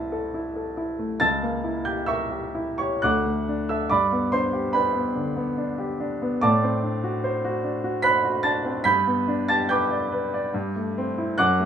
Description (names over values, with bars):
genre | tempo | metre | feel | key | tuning
classical, romantic character piece for solo piano | 60-75 BPM | 3/4 | rubato | G major | A4 = 440 Hz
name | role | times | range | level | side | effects
warm baby grand piano | solo | 0.0-11.7 s | C2 to B6 | -22 LUFS | right 1 dB | none
room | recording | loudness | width
moderate studio reverb, RT60 0.8 s | small room ambience | -22 LUFS | side -8 dB against mid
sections
0.0-11.7 A section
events
none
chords
0.0 Am/C; 1.2 C#dim7; 3.0 D; 3.9 G; 6.4 D7/A; 8.9 G; 10.5 Am7/G